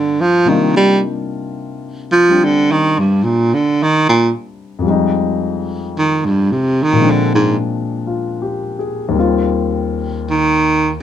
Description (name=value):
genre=jazz ballad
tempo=55 BPM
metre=4/4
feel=swing 66% on 8ths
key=unclear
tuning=A4 = 440 Hz
part: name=clear baritone saxophone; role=melody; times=0.0-10.9 s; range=G2 to G3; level=-12 LUFS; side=right 2 dB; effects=none
part: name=warm grand piano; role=accompaniment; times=0.0-11.0 s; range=Eb2 to Ab4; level=-18 LUFS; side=left 4 dB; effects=none
room=moderate small room reverb, RT60 0.5 s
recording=dark, warm production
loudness=-13 LUFS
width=side -10 dB against mid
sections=0.0-11.0 A section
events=baritone saxophone solo 0.0-11.0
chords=0.5 Cm11; 4.8 Fm9; 7.0 Bb9; 9.2 Eb6